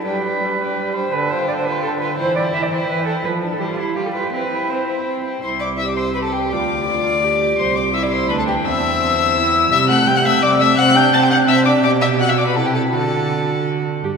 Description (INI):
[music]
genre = quick classical-period movement for string quartet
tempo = 168 BPM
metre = 3/4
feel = straight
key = C major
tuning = A4 = 441 Hz
[part]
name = dark violin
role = melody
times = 0.0-13.7 s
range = G5 to A6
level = -20 LUFS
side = left 5 dB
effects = none
[part]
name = rich violin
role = second line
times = 0.0-13.7 s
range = D4 to A5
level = -22 LUFS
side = left 2 dB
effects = none
[part]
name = dark cello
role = bass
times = 0.0-14.2 s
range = C2 to E5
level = -21 LUFS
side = right 2 dB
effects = none
[part]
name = warm viola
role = accompaniment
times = 0.1-14.1 s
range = D3 to G4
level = -23 LUFS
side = right 2 dB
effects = none
[sound]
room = wet church reverb, RT60 3.2 s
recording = minimal, uncompressed stereo recording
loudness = -15 LUFS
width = side -5 dB against mid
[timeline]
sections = 0.0-5.4 A section; 5.4-14.0 B section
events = none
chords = 0.1 G; 1.1 G7/D; 2.2 C/E; 3.2 Dm/F; 3.6 C/G; 4.0 G7; 4.3 C; 6.5 G5/D; 7.6 C; 8.7 C/E; 9.7 Am7/C; 10.8 Cadd9; 11.8 G/B; 12.6 Am/C; 12.9 D